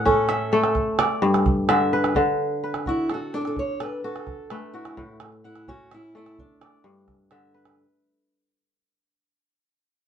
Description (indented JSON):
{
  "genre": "west african traditional, West African string and xylophone music",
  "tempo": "86 BPM (dotted quarters)",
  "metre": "12/8",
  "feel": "straight",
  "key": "D major",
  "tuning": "A4 = 438 Hz",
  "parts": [
    { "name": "kora", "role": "arpeggios", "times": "0.0-8.8 s", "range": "G2 to F#5", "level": "-22 LUFS", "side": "left 1 dB", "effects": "none" },
    { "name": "fingerpicked steel-string acoustic guitar", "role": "melody", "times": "0.1-7.3 s", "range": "D4 to C#5", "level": "-28 LUFS", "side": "right 2 dB", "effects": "none" },
    { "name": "calabash", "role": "percussion", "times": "0.1-7.8 s", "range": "none", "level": "-26 LUFS", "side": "right 3 dB", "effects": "none" }
  ],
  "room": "wet small room reverb, RT60 0.5 s",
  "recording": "band playing live in one room, nothing above 10.6 kHz",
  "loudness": "-20 LUFS",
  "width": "side -8 dB against mid",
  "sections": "0.0-7.8 A section",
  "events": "fade-out 0.0-7.8",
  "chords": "0.0 A; 0.8 G; 2.2 D; 5.0 A; 6.4 G"
}